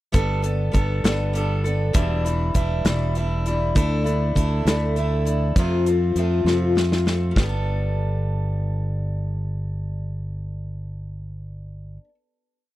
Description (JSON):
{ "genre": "folk rock and heartland rock", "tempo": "66 BPM (dotted quarters)", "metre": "6/8", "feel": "straight", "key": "G mixolydian", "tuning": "A4 = 442 Hz", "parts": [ { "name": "picked steel-string acoustic guitar", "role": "accompaniment", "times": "0.1-12.1 s", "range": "E2 to A4", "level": "-25 LUFS", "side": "left 2 dB", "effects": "none" }, { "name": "fingered electric bass", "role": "bass", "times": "0.1-12.0 s", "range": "E1 to F2", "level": "-23 LUFS", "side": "equal", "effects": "none" }, { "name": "natural country drum kit", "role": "drums", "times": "0.1-7.5 s", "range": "hi-hat, kick drum, snare drum", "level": "-22 LUFS", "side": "equal", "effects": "none" } ], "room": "small room reverb", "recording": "dry, close 1970s-style studio recording", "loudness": "-20 LUFS", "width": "side -16 dB against mid", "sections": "0.1-7.4 verse; 7.4-11.0 final chord", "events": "drum fill 6.5-7.4", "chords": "0.1 Gadd9; 2.0 Em7; 3.8 Dsus2; 5.6 F; 7.4 Gadd9" }